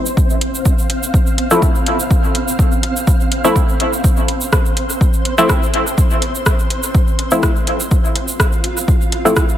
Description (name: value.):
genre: dub techno.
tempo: 124 BPM.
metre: 4/4.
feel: swing 54% on 16ths.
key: unclear.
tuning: A4 = 440 Hz.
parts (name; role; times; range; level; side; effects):
flickering grainy texture; texture; 0.0-9.6 s; C4 to F5; -22 LUFS; right 1 dB; built-in reverb, sidechain pumping.
egg shaker; percussion; 0.1-9.6 s; none; -25 LUFS; right 4 dB; none.
electronic kick drum; drums; 0.2-9.5 s; none; -15 LUFS; equal; overdrive.
deep house drum kit; drums; 0.4-9.5 s; hi-hat, rim click; -21 LUFS; equal; dub echo.
filtered dub chord stab; stabs; 1.5-9.4 s; F3 to E4; -18 LUFS; left 1 dB; chorus, phaser, sidechain pumping, dub echo.
room: light reverb, digital ambience.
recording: none.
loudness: -13 LUFS.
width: side -11 dB against mid.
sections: 0.0-9.6 A section.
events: none.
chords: 0.0 Fmaj7.